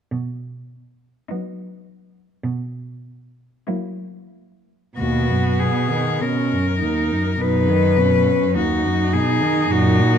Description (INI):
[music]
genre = classical, lyrical piece for cello ensemble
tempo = 44-54 BPM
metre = 4/4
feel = rubato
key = B major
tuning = A4 = 438 Hz
[part]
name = warm cello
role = bass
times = 0.1-10.2 s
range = F#2 to B2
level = -23 LUFS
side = right 3 dB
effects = none
[part]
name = clear cello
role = melody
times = 1.3-10.2 s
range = D#4 to B4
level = -22 LUFS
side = left 8 dB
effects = none
[part]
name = rich cello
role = second line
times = 1.3-10.2 s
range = A#3 to D#4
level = -24 LUFS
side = right 6 dB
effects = none
[part]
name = warm cello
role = accompaniment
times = 1.3-10.2 s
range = D#2 to F#3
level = -22 LUFS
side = left 1 dB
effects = none
[sound]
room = moderate recital hall reverb, RT60 1.8 s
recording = dark, warm production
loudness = -17 LUFS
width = side -8 dB against mid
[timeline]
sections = 0.1-5.0 A section; 5.0-10.2 B section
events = none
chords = 0.1 B; 5.0 B/D#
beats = | 0.12 1.30 2.45 3.68 | 4.99 6.21 7.41 8.56 | 9.72